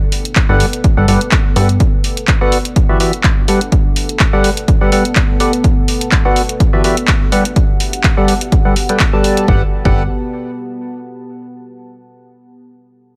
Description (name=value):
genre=piano house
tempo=125 BPM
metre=4/4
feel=swing 54% on 16ths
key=G major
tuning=A4 = 440 Hz
part: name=deep dark ambient pad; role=texture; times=0.0-11.4 s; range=B3 to A5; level=-26 LUFS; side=equal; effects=chorus, built-in reverb, sidechain pumping
part: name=house drum kit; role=drums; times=0.1-9.5 s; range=handclaps, hi-hat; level=-21 LUFS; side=equal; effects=none
part: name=electronic kick drum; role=drums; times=0.4-9.9 s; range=none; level=-16 LUFS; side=equal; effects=none
part: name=percussive organ stab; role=riff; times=0.5-10.0 s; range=E3 to A5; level=-19 LUFS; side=equal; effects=subtle chorus, sidechain pumping, tape echo
part: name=plucky analog bass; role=bass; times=0.5-1.8, 9.5-10.1 s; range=G1 to G2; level=-16 LUFS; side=equal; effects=sidechain pumping
room=little or no reverb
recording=none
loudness=-13 LUFS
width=mono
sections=0.0-9.5 A section; 9.5-11.4 B section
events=none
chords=0.0 Gmaj9; 1.8 Bm7; 2.8 Em9; 3.5 Gmaj9; 5.6 Bm7; 6.6 Em9; 7.3 Gmaj9